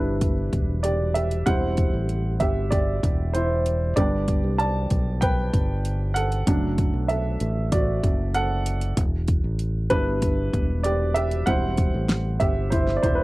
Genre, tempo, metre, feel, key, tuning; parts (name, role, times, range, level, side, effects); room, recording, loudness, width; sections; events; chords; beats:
piano-driven pop; 96 BPM; 4/4; straight; A4 = 439 Hz
warm upright piano; accompaniment; 0.0-13.2 s; F#3 to A5; -25 LUFS; right 1 dB
fingered electric bass; bass; 0.0-13.2 s; E1 to C2; -25 LUFS; equal
pop drum kit; drums; 0.2-13.2 s; hi-hat, kick drum, snare drum; -24 LUFS; equal
little or no reverb; dry, close 1970s-style studio recording; -21 LUFS; side -20 dB against mid
0.0-13.2 A section
upright piano solo 0.0-13.2
0.0 Em; 1.5 C/E; 4.0 G; 6.5 D/F#; 9.0 Em; 11.5 C/E
0.21 0.84 | 1.47 2.09 2.72 3.34 | 3.97 4.59 5.22 5.84 | 6.47 7.09 7.72 8.35 | 8.97 9.60 10.22 10.85 | 11.47 12.10 12.72